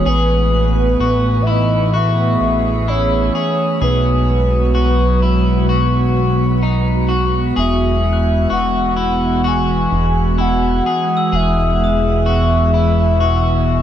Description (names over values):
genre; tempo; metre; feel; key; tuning
dream pop; 64 BPM; 4/4; straight; E major; A4 = 440 Hz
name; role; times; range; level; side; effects
soft octave-layered synth lead; melody; 0.0-13.8 s; B4 to G#5; -20 LUFS; equal; chorus, ping-pong delay
hollow soft pad; sustained chords; 0.0-13.8 s; E3 to B4; -18 LUFS; right 1 dB; chorus
electric guitar at the edge of break-up; arpeggios; 0.0-13.8 s; D#4 to G#4; -21 LUFS; left 3 dB; wide subtle chorus, ping-pong delay
chorused synth bass; bass; 0.0-13.8 s; E1 to B1; -17 LUFS; equal; none
glockenspiel with hard plastic mallets; texture; 8.1-13.0 s; D#6 to F#6; -31 LUFS; equal; ping-pong delay
room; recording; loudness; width
moderate shimmer reverb, RT60 8.3 s; dark, warm production; -13 LUFS; side -10 dB against mid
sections
0.0-13.8 A section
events
none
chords
0.1 Asus2; 3.8 B6; 7.6 Eadd9